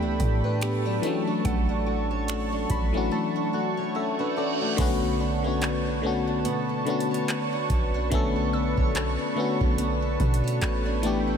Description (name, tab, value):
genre	contemporary R&B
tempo	72 BPM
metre	4/4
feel	swing 58% on 16ths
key	B minor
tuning	A4 = 440 Hz
part	FM electric piano	accompaniment	0.0-11.4 s	D3 to B5	-27 LUFS	left 4 dB	chorus
part	warm analog pad	sustained chords	0.0-11.4 s	A4 to C#6	-33 LUFS	right 1 dB	chorus
part	picked steel-string acoustic guitar	arpeggios	0.0-11.4 s	A3 to C#5	-32 LUFS	right 5 dB	analog chorus, ping-pong delay
part	warm 808-style bass	bass	0.0-11.4 s	A1 to B2	-29 LUFS	right 1 dB	none
part	mallet-like synth pluck	texture	0.0-11.4 s	F#5 to E6	-44 LUFS	right 3 dB	none
part	booming analog drum machine	drums	0.2-11.3 s	crash cymbal, finger snaps, handclaps, hi-hat, kick drum	-29 LUFS	right 1 dB	none
part	reverse cymbal	sound effects	3.9-4.8 s	none	-38 LUFS	right 6 dB	none
room	moderate huge ambient reverb, RT60 6.0 s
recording	dreamy mix soaked in reverb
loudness	-23 LUFS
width	side -7 dB against mid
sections	0.0-4.8 A section; 4.8-11.4 B section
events	FM electric piano fill 2.3-4.8; reverse cymbal 3.9-4.8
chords	0.0 A9sus4; 1.0 Dmaj7/A; 4.8 Bm9